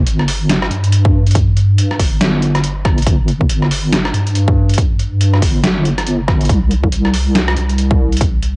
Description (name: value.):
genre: deep dubstep.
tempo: 140 BPM.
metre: 4/4.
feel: swing 60% on 16ths, half-time.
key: unclear.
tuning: A4 = 440 Hz.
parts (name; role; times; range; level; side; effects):
deep soft wobble bass; bass; 0.0-8.6 s; G1 to G2; -14 LUFS; equal; chorus.
trip hop sampler-style drum kit; drums; 0.1-8.5 s; hi-hat, rim click, snare drum; -18 LUFS; equal; overdrive, cassette tape.
electronic kick drum; drums; 1.1-8.3 s; none; -14 LUFS; equal; cassette tape.
room: little or no reverb.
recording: home recording on cassette, nothing above 10.3 kHz.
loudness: -11 LUFS.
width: side -29 dB against mid.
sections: 0.0-8.6 A section.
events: none.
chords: none.